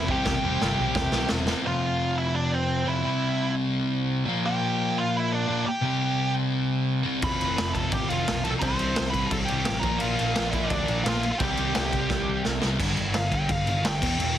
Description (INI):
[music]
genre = punk rock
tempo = 172 BPM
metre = 4/4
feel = straight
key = unclear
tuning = A4 = 440 Hz
[part]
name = nasal lead guitar with a parked wah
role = melody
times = 0.0-14.4 s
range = C4 to C6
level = -28 LUFS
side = right 1 dB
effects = overdrive
[part]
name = sludgy distorted guitar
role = riff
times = 0.0-14.4 s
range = E2 to C4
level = -26 LUFS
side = left 1 dB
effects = overdrive
[part]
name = picked electric bass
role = bass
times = 0.0-1.5, 7.2-14.4 s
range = E1 to D2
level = -32 LUFS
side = equal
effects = none
[part]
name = raw garage drum kit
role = drums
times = 0.1-1.6, 7.2-14.3 s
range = crash cymbal, kick drum, snare drum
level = -28 LUFS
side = equal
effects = none
[sound]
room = light reverb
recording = heavily compressed radio sound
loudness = -23 LUFS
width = side -11 dB against mid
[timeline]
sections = 0.0-1.7 A section; 1.7-12.8 B section; 12.8-14.4 C section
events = drum fill 0.3-1.7, 12.1-12.8; lead electric guitar solo 12.8-14.4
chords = 0.0 C/E; 1.7 F5; 3.1 C; 4.3 Bb; 5.8 C5; 7.2 F; 8.6 C5; 9.8 Bb; 11.4 C5; 12.8 G5